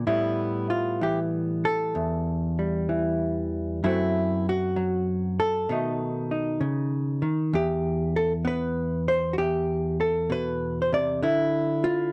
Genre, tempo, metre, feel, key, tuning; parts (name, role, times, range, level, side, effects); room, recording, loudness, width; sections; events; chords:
solo jazz; 65 BPM; 4/4; swing 67% on 8ths, rubato; A4 = 441 Hz
hollow-body jazz guitar; solo; 0.0-12.1 s; E2 to D5; -26 LUFS; equal
light reverb; worn, warbling old tape, cassette tape, warbly pitch drift; -26 LUFS; mono
0.0-12.1 A section
0.1 Asus2; 3.8 F#dim; 5.7 B7; 7.5 E5; 11.2 Dm